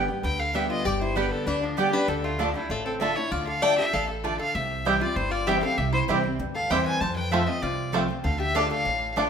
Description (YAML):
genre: bluegrass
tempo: 195 BPM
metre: 4/4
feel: straight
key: D dorian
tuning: A4 = 439 Hz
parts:
  - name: picked steel-string acoustic guitar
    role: accompaniment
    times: 0.0-9.3 s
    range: F2 to G4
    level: -30 LUFS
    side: left 1 dB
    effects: none
  - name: mandolin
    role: stabs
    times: 0.0-9.3 s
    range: A3 to A5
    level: -30 LUFS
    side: right 6 dB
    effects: none
  - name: upright bass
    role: bass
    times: 0.0-9.3 s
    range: G1 to F2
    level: -32 LUFS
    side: right 1 dB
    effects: none
  - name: clear fiddle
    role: melody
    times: 0.2-9.1 s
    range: D4 to A5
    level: -29 LUFS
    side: equal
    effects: none
  - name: lap resonator guitar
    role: second line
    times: 0.2-9.1 s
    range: F3 to D5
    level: -30 LUFS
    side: left 4 dB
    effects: none
  - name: bluegrass banjo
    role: arpeggios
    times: 4.9-9.2 s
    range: G3 to F4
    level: -30 LUFS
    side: right 1 dB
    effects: none
room: wet large studio reverb, RT60 1.2 s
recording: minimal, uncompressed stereo recording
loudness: -23 LUFS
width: side -7 dB against mid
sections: 0.0-9.3 A section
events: none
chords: 0.0 G; 2.1 Dm; 4.5 C; 7.0 F; 8.2 Dm